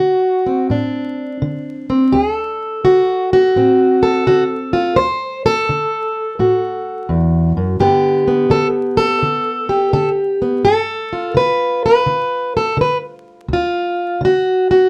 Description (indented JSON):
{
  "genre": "acoustic country blues, solo or duo",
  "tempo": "84 BPM",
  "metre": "4/4",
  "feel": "swing 66% on 8ths",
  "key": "D mixolydian",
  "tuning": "A4 = 440 Hz",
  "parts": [
    { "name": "fingerpicked plugged-in steel-string acoustic guitar", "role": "solo", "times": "0.0-14.9 s", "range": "D2 to C5", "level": "-16 LUFS", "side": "equal", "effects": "none" }
  ],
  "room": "wet studio reverb, RT60 0.6 s",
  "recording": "dark, warm production, vinyl crackle",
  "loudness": "-16 LUFS",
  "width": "mono",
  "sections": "0.0-14.9 A section",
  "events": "none",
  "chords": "0.0 D7; 7.8 G7; 13.5 D"
}